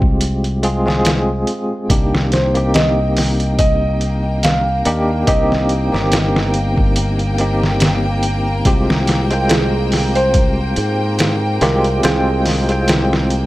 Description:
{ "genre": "trip hop", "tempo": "71 BPM", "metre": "4/4", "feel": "swing 55% on 16ths", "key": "C minor", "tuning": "A4 = 442 Hz", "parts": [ { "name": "bell-like tine electric piano", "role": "accompaniment", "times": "0.0-13.5 s", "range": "Ab3 to G5", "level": "-19 LUFS", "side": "equal", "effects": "tremolo, tape echo" }, { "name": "modern bright fingered electric bass", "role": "bass", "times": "0.0-13.5 s", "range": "G1 to Ab2", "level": "-18 LUFS", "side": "equal", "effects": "tube saturation" }, { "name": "trip hop sampler-style drum kit", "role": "drums", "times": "0.0-13.5 s", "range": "hi-hat, kick drum, snare drum", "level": "-18 LUFS", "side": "equal", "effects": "studio reverb" }, { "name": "warm symphonic violin section", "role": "sustained chords", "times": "1.9-13.5 s", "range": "Bb3 to G5", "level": "-25 LUFS", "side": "left 1 dB", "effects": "none" }, { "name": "felt-muted upright piano", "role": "melody", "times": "2.3-13.5 s", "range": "Ab4 to F5", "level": "-21 LUFS", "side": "right 1 dB", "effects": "tape echo" } ], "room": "little or no reverb", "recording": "none", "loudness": "-13 LUFS", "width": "side -17 dB against mid", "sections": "0.0-13.5 A section", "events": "none", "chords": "0.0 Fmadd9/C; 1.9 Cm7; 8.7 Fmadd9/C", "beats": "0.20 1.05 | 1.89 2.74 3.58 4.43 | 5.27 6.12 6.96 7.81 | 8.65 9.50 10.34 11.19 | 12.03 12.88" }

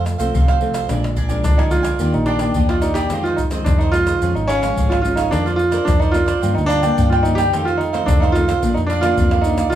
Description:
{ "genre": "samba and choro", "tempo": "109 BPM", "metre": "4/4", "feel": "straight", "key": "Eb major", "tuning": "A4 = 441 Hz", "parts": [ { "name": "cavaquinho", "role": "accompaniment", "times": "0.0-9.8 s", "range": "D4 to Ab5", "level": "-24 LUFS", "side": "right 4 dB", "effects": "none" }, { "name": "nylon-string guitar", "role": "accompaniment", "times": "0.0-9.8 s", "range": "F2 to Bb4", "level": "-24 LUFS", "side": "left 3 dB", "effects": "none" }, { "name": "hollow-body short-scale fingered electric bass", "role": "bass", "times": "0.0-9.8 s", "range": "Ab1 to G2", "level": "-22 LUFS", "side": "equal", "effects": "none" }, { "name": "maracas, pandeiro, tamborim and surdo", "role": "percussion", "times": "0.1-9.8 s", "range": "none", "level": "-21 LUFS", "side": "equal", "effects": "none" }, { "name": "clear baby grand piano", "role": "melody", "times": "1.4-9.8 s", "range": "Db4 to G4", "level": "-19 LUFS", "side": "right 2 dB", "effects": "none" } ], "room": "wet large studio reverb, RT60 1.1 s", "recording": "band playing live in one room", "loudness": "-15 LUFS", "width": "side -11 dB against mid", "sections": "0.0-2.0 A section; 2.0-9.8 B section", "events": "none", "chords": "0.0 F; 0.9 Bb7; 2.0 Ebmaj7; 3.1 Fm7; 4.2 Db; 5.3 Bbadd9/F; 6.4 Gm7; 7.5 F7; 8.6 Bb", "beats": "0.35 0.91 1.46 | 2.01 2.56 3.11 3.67 | 4.22 4.77 5.32 5.87 | 6.43 6.98 7.53 8.08 | 8.63 9.19 9.74" }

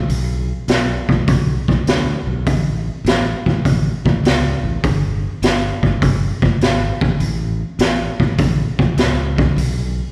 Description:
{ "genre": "blues rock power trio and southern rock", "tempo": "101 BPM", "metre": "4/4", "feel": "swing 68% on 8ths", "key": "unclear", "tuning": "A4 = 440 Hz", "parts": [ { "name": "modern bright fingered electric bass", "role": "bass", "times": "0.0-10.0 s", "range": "G1 to D2", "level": "-23 LUFS", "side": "equal", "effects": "none" }, { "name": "raw garage drum kit", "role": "drums", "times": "0.1-9.8 s", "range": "hi-hat, kick drum, snare drum", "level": "-19 LUFS", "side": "equal", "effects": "none" } ], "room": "little or no reverb", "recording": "live gig heard through the venue's PA, recital hall reverb", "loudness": "-17 LUFS", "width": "mono", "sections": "0.0-10.1 A section", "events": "none", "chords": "none", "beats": "| 0.08 0.68 1.27 1.87 | 2.46 3.05 3.65 4.24 | 4.83 5.42 6.02 6.61 | 7.20 7.79 8.38 8.98 | 9.57" }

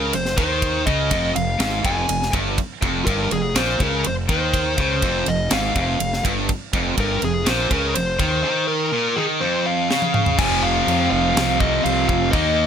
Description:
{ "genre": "hard rock", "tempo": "123 BPM", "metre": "4/4", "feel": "straight", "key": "F minor", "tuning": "A4 = 440 Hz", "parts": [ { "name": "dark smooth lead guitar", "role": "melody", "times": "0.0-12.7 s", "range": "Ab4 to Ab5", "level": "-23 LUFS", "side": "left 2 dB", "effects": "overdrive, slapback echo" }, { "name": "cranked stack guitar", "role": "riff", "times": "0.0-12.7 s", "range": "F2 to Eb4", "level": "-25 LUFS", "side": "left 11 dB", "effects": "overdrive" }, { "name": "tight distorted guitar", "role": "riff", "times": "0.0-12.7 s", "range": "F2 to Eb4", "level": "-24 LUFS", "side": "right 14 dB", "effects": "distortion" }, { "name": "fuzz fingered electric bass", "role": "bass", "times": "0.0-12.7 s", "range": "F1 to F2", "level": "-25 LUFS", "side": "equal", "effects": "overdrive" }, { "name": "tight metal drum kit", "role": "drums", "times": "0.1-12.4 s", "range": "crash cymbal, kick drum, ride cymbal, snare drum, toms", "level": "-24 LUFS", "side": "equal", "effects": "none" }, { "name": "crunchy overdriven guitar", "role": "riff", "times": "10.4-12.7 s", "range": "F2 to Eb4", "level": "-27 LUFS", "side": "right 1 dB", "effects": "none" } ], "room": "moderate studio reverb, RT60 0.6 s", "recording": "none", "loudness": "-17 LUFS", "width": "side -8 dB against mid", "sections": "0.0-10.4 A section; 10.4-12.7 B section", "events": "drum fill 9.9-10.4", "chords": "0.0 Fm; 10.4 F5", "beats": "0.13 | 0.62 1.11 1.60 2.09 | 2.58 3.07 3.56 4.05 | 4.54 5.03 5.51 6.00 | 6.49 6.98 7.47 7.95 | 8.44 8.93 9.42 9.90 | 10.39 10.88 11.36 11.85 | 12.33" }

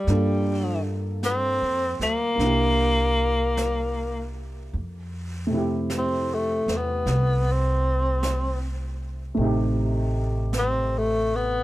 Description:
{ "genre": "jazz ballad", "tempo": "52 BPM", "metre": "4/4", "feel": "swing 66% on 8ths", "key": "F major", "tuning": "A4 = 440 Hz", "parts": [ { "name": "clear tenor saxophone", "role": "melody", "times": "0.0-11.6 s", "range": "G3 to C4", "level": "-24 LUFS", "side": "left 1 dB", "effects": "none" }, { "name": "warm upright piano", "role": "accompaniment", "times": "0.0-11.6 s", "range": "C3 to A4", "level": "-29 LUFS", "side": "right 1 dB", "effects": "none" }, { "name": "upright bass", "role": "bass", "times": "0.1-11.6 s", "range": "A1 to G2", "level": "-26 LUFS", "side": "equal", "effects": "none" }, { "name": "jazz brush drum kit", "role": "drums", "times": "0.1-11.6 s", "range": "brushed snare drum, hi-hat, snare drum", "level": "-37 LUFS", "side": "right 2 dB", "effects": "none" } ], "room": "light reverb", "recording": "none", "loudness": "-22 LUFS", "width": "side -16 dB against mid", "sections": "0.0-4.7 A section; 4.7-11.6 B section", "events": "tenor saxophone solo 4.7-11.6", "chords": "0.1 Gm7; 2.4 C9; 4.7 Fmaj9; 9.4 Am7b5", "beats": "| 0.08 1.24 2.40 3.57 | 4.74 5.90 7.06 8.21 | 9.37 10.52" }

